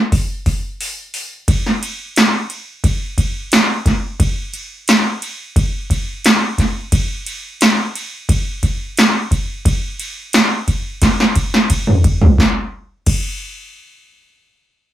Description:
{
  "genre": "rock",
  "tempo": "88 BPM",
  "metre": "4/4",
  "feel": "straight",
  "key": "none",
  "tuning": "none",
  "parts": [
    { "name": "electro analog drum machine", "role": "drums", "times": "0.1-13.3 s", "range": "crash cymbal, hi-hat, kick drum, ride cymbal, snare drum, toms", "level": "-14 LUFS", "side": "equal", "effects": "none" }
  ],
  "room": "moderate small room ambience, RT60 0.5 s",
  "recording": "rough rehearsal-room recording",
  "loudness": "-14 LUFS",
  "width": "side -13 dB against mid",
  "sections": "0.0-1.5 A section; 1.5-12.4 B section; 12.4-14.9 C section",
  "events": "break 0.8-1.5; drum fill 11.0-12.4",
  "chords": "none",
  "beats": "0.11 0.79 | 1.47 2.15 2.83 3.51 | 4.19 4.87 5.56 6.24 | 6.92 7.60 8.28 8.96 | 9.65 10.33 11.01 11.69 | 12.37 13.06"
}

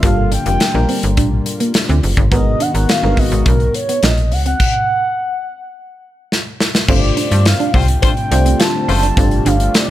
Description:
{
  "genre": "early-eighties boogie funk",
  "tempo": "105 BPM",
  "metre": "4/4",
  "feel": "straight",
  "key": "unclear",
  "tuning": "A4 = 440 Hz",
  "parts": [
    { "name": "mellow horn-like synth lead", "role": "melody", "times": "0.0-9.9 s", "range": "Bb4 to A5", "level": "-20 LUFS", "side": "right 1 dB", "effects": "chorus, phaser" },
    { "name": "FM electric piano", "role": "accompaniment", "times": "0.0-9.9 s", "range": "G3 to C5", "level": "-21 LUFS", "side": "left 2 dB", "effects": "chorus, phaser" },
    { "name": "chorused pulse-width pad", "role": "sustained chords", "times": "0.0-9.9 s", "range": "D3 to Gb4", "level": "-26 LUFS", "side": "left 2 dB", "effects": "none" },
    { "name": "semi-hollow electric guitar", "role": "riff", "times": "0.0-9.8 s", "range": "Bb3 to F4", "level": "-23 LUFS", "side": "right 4 dB", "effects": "ensemble chorus" },
    { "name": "slap-like FM bass", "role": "bass", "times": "0.0-9.7 s", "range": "F1 to G2", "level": "-15 LUFS", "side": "equal", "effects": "none" },
    { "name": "modern studio drum kit", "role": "drums", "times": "0.0-9.9 s", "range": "crash cymbal, hi-hat, kick drum, snare drum", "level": "-16 LUFS", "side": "equal", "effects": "none" },
    { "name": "clear horn section", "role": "second line", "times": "7.7-9.1 s", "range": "A3 to C5", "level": "-22 LUFS", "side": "left 8 dB", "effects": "none" }
  ],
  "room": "studio reverb",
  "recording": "none",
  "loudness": "-12 LUFS",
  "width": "side -13 dB against mid",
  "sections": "0.0-6.9 A section; 6.9-9.9 B section",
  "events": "stop 4.6-6.9; drum fill 6.3-6.9",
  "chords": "0.0 Gm7; 2.3 Abm9; 4.6 N.C.; 6.9 G9sus4",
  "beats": "| 0.03 0.60 1.17 1.74 | 2.31 2.89 3.46 4.03 | 4.60 5.17 5.74 6.32 | 6.89 7.46 8.03 8.60 | 9.17 9.74"
}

